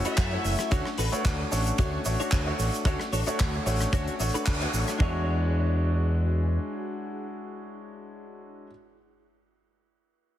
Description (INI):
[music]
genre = nu-disco, nu disco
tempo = 112 BPM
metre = 4/4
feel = swing 54% on 16ths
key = E mixolydian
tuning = A4 = 441 Hz
[part]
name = bright grand piano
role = accompaniment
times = 0.0-8.7 s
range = G#3 to C#5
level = -32 LUFS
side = left 1 dB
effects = tape echo
[part]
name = direct-recorded clean electric guitar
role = riff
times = 0.0-8.7 s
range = D4 to F#5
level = -35 LUFS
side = left 2 dB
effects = ensemble chorus, tape echo
[part]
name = damped 70s drum kit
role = drums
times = 0.0-5.0 s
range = handclaps, hi-hat, ride cymbal, rim click, shaker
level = -33 LUFS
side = equal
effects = none
[part]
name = fingered electric bass with an envelope filter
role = bass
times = 0.1-6.6 s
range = F#1 to F#2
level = -27 LUFS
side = equal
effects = sidechain pumping
[part]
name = kick drum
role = drums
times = 0.2-5.1 s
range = none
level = -26 LUFS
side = equal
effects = none
[sound]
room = light reverb, studio ambience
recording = heavily compressed radio sound, multiband compression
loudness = -24 LUFS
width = side -12 dB against mid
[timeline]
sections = 0.0-5.0 A section; 5.0-9.3 B section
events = drop 0.0-5.0; clean electric guitar fill 0.0-0.7; band accent 4.5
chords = 0.0 F#m7; 0.7 Dmaj7; 5.0 E13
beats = 0.18 | 0.72 1.25 1.79 2.32 | 2.86 3.40 3.93 4.47 | 5.00 5.54 6.07 6.61 | 7.14 7.68 8.22